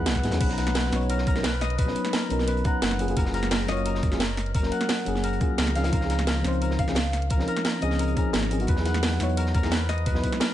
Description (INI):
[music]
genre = liquid drum and bass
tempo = 174 BPM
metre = 4/4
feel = straight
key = B major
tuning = A4 = 439 Hz
[part]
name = mellow FM electric piano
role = accompaniment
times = 0.0-10.5 s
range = E#3 to A#5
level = -28 LUFS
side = left 1 dB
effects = chorus, cassette tape, dub echo
[part]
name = concert harp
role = arpeggios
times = 0.0-10.5 s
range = A#4 to F#5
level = -31 LUFS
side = left 4 dB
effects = ping-pong delay
[part]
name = sub bass with octave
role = bass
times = 0.0-10.2 s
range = F#1 to G#2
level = -27 LUFS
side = equal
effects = tube saturation
[part]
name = crunchy breakbeat drum kit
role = drums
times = 0.1-10.5 s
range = hi-hat, snare drum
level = -37 LUFS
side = equal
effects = high-pass filter on hats, high-pass filter on snare, high-pass filter on room
[part]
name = electronic kick drum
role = drums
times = 0.1-10.3 s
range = none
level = -26 LUFS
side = equal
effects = none
[part]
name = garage drum kit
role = drums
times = 0.1-10.5 s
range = crash cymbal, hi-hat, snare drum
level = -28 LUFS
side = right 2 dB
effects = none
[sound]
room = light reverb, small room ambience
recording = nothing above 10.6 kHz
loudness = -22 LUFS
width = side -12 dB against mid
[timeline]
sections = 0.0-10.5 A section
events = none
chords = 0.4 Bmaj9; 3.0 F#maj9; 5.8 C#maj9; 8.7 Emaj9